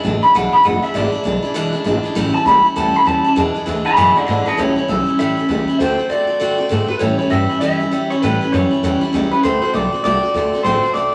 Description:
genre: rockabilly.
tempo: 198 BPM.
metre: 4/4.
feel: swing 62% on 8ths.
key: A mixolydian.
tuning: A4 = 437 Hz.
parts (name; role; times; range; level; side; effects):
picked steel-string acoustic guitar; accompaniment; 0.0-11.1 s; E2 to F#4; -21 LUFS; equal; none.
upright bass; bass; 0.0-11.1 s; F#1 to A2; -24 LUFS; equal; none.
electric guitar through a small old amp; melody; 0.2-11.1 s; B4 to B5; -19 LUFS; equal; none.
room: wet large studio reverb, RT60 1.3 s.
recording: none.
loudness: -16 LUFS.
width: mono.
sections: 0.0-4.6 A section; 4.6-11.1 B section.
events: clean electric guitar solo 0.0-4.6.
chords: 0.0 E7; 2.2 A7; 3.4 E7; 4.6 A7; 5.8 D7; 7.0 A7; 9.4 D7.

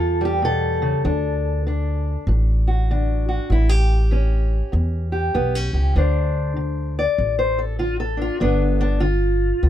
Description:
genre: acoustic country blues, solo or duo.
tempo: 98 BPM.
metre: 4/4.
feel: swing 63% on 8ths.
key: unclear.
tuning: A4 = 439 Hz.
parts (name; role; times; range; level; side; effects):
fingerpicked steel-string acoustic guitar; melody; 0.0-9.7 s; D2 to D5; -22 LUFS; left 1 dB; none.
upright bass; bass; 0.0-9.7 s; G1 to E2; -20 LUFS; equal; none.
room: light reverb.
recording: none.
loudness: -18 LUFS.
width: side -11 dB against mid.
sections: 0.0-6.0 A section; 6.0-9.7 B section.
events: steel-string acoustic guitar solo 6.0-9.7.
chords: 0.0 A7; 1.1 D; 3.5 A7; 6.0 D5; 8.4 G7.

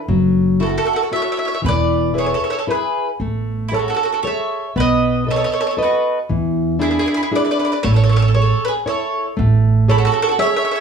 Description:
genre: italian folk, Italian serenade.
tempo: 117 BPM.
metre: 3/4.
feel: swing 54% on 8ths.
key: A major.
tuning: A4 = 440 Hz.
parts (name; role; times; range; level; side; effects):
flamenco guitar; accompaniment; 0.1-10.8 s; E3 to D#5; -20 LUFS; left 1 dB; none.
upright bass; bass; 0.1-10.1 s; E1 to E2; -17 LUFS; right 2 dB; none.
mandolin; melody; 0.6-10.8 s; G#4 to E5; -20 LUFS; right 1 dB; none.
mandolin; second line; 0.6-10.8 s; E4 to C#5; -25 LUFS; right 2 dB; none.
room: moderate small room reverb, RT60 0.5 s.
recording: studio ambience.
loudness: -15 LUFS.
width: side -6 dB against mid.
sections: 0.0-9.4 A section; 9.4-10.8 A section.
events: none.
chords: 0.1 F#m7; 1.6 E; 3.2 Amaj7; 4.8 B7; 6.3 E7; 7.8 Amaj7.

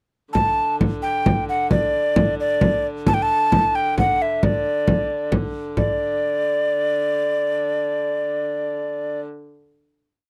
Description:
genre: medieval dance.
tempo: 89 BPM (dotted quarters).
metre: 6/8.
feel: straight.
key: D major.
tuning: A4 = 440 Hz.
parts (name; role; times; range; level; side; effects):
mellow hollow tenor recorder; melody; 0.3-9.2 s; D5 to A5; -22 LUFS; equal; none.
rich hurdy-gurdy; drone; 0.3-9.3 s; D3; -33 LUFS; equal; none.
frame drum; percussion; 0.3-6.0 s; none; -22 LUFS; equal; none.
room: light reverb.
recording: dry, close 1970s-style studio recording.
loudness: -21 LUFS.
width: mono.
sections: 0.3-5.8 A section; 5.8-8.4 final note.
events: none.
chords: none.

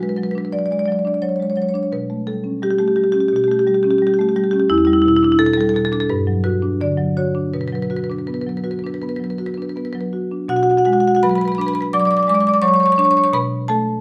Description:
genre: classical, contemporary piece for solo marimba.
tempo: 79-88 BPM.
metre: 4/4.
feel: rubato.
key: B minor.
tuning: A4 = 437 Hz.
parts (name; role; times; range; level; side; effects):
marimba with medium hard mallets; solo; 0.0-14.0 s; E2 to D6; -18 LUFS; equal; none.
room: light reverb.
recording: close, detailed microphones.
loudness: -18 LUFS.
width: mono.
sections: 0.0-10.5 A section; 10.5-14.0 A section.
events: none.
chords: 0.0 Bm6; 1.9 A9/B; 4.7 Em7; 6.1 G5; 7.5 Bm; 10.5 Bm6; 13.3 Asus2/B.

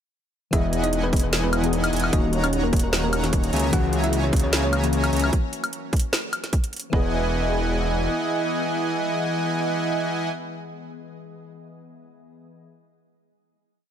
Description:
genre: future bass.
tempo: 150 BPM.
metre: 4/4.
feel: swing 54% on 16ths, half-time.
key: E lydian.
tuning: A4 = 440 Hz.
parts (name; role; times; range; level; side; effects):
thumb-piano-like synth pluck; melody; 0.5-10.3 s; A#3 to F#5; -29 LUFS; equal; chorus, sidechain pumping, ping-pong delay.
glassy digital keys; accompaniment; 0.5-12.7 s; D#3 to D#5; -31 LUFS; left 5 dB; chorus, sidechain pumping, ping-pong delay.
shimmering ambient pad; sustained chords; 1.5-10.3 s; D#3 to D#5; -35 LUFS; equal; chorus, built-in reverb, sidechain pumping.
big bright polysynth; riff; 0.5-10.3 s; D#3 to A#5; -26 LUFS; right 1 dB; chorus, sidechain pumping, ping-pong delay.
wide detuned saw bass; bass; 0.5-8.1 s; D#1 to C#2; -25 LUFS; equal; chorus, sidechain pumping.
electronic kick drum; drums; 0.5-7.0 s; none; -22 LUFS; equal; none.
trap drum kit; drums; 0.5-6.9 s; hi-hat, snare drum, woodblock; -26 LUFS; equal; none.
room: light reverb.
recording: none.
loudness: -20 LUFS.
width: side -9 dB against mid.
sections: 0.5-6.9 drop; 6.9-10.1 final chord.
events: drop 0.5-6.9.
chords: 0.5 Emaj7; 2.1 D#m7; 3.5 F#7/C#; 5.3 N.C.; 6.9 Emaj7.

